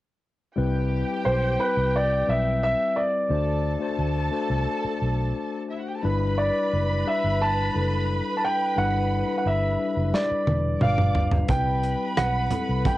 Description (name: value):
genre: lush 1970s-style soul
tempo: 88 BPM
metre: 4/4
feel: straight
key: G major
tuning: A4 = 439 Hz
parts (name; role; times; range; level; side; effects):
- warm studio violin section; second line; 0.6-13.0 s; E4 to D6; -32 LUFS; right 1 dB; cassette tape
- mellow tine electric piano; accompaniment; 0.6-13.0 s; G3 to C5; -29 LUFS; left 5 dB; slow stereo tremolo, cassette tape
- vintage muted fingered electric bass; bass; 0.6-12.8 s; E1 to D2; -26 LUFS; right 1 dB; none
- warm concert grand piano; melody; 1.2-13.0 s; B4 to A5; -26 LUFS; right 1 dB; none
- modern studio drum kit; drums; 10.1-13.0 s; hi-hat, kick drum, rim click, snare drum, toms; -24 LUFS; right 1 dB; cassette tape
- congas; percussion; 11.5-13.0 s; none; -30 LUFS; right 6 dB; none
room: light reverb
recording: home recording on cassette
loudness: -22 LUFS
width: side -16 dB against mid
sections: 0.6-13.0 A section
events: drum fill 10.1-11.5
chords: 0.6 Cmaj7; 3.3 D7; 6.0 G6; 10.8 G7; 11.5 Cmaj7